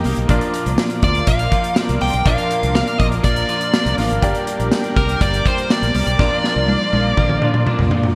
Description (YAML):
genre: 1980s-style pop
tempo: 122 BPM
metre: 4/4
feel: straight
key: Bb major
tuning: A4 = 440 Hz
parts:
  - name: clear concert grand piano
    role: accompaniment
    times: 0.0-8.2 s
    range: Bb3 to Bb5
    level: -29 LUFS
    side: equal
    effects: shimmer reverb
  - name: crunchy overdriven guitar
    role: accompaniment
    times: 0.0-8.2 s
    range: G2 to Eb4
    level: -33 LUFS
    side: equal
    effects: none
  - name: warm analog pad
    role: sustained chords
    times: 0.0-8.1 s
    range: Bb4 to Eb6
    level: -30 LUFS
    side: equal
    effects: chorus, shimmer reverb
  - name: twelve-string electric guitar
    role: riff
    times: 0.0-8.2 s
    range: F3 to G4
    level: -29 LUFS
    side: equal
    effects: ensemble chorus, shimmer reverb
  - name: modern studio drum kit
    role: drums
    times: 0.0-8.2 s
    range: hi-hat, kick drum, snare drum, tambourine, toms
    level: -21 LUFS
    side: equal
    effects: gated reverb
  - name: fretless electric bass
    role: bass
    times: 0.1-8.1 s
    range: G1 to Bb2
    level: -23 LUFS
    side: equal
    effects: subtle chorus
  - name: dark smooth lead guitar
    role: melody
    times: 1.0-7.6 s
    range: Bb4 to G5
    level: -24 LUFS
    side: equal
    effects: overdrive, shimmer reverb, delay
room: moderate lush hall reverb, RT60 2.4 s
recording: bright 1980s-style digital production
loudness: -17 LUFS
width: mono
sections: 0.0-8.2 A section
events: grand piano fill 0.0; drum fill 6.2-8.2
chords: 0.3 Bb; 4.2 Gm; 6.2 Bb